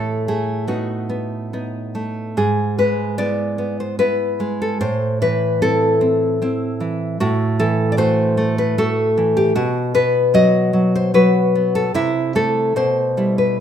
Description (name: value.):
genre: romantic piece for solo classical guitar.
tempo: 75 BPM.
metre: 3/4.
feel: rubato.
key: unclear.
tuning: A4 = 440 Hz.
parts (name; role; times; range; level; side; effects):
nylon-string guitar; solo; 0.0-13.6 s; G#2 to D#5; -16 LUFS; equal; none.
room: moderate recital hall reverb, RT60 1.4 s.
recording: minimal, uncompressed stereo recording.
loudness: -16 LUFS.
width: side -9 dB against mid.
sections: 0.0-13.6 A section.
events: none.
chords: 0.0 B7/A; 2.4 E/G#; 4.8 Am; 7.2 Am6; 9.6 B5; 11.9 Am/C; 12.8 Em/B.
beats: 0.69 1.53 | 2.37 3.19 4.01 | 4.82 5.62 6.42 | 7.21 8.00 8.78 | 9.56 10.35 11.15 | 11.95 12.76.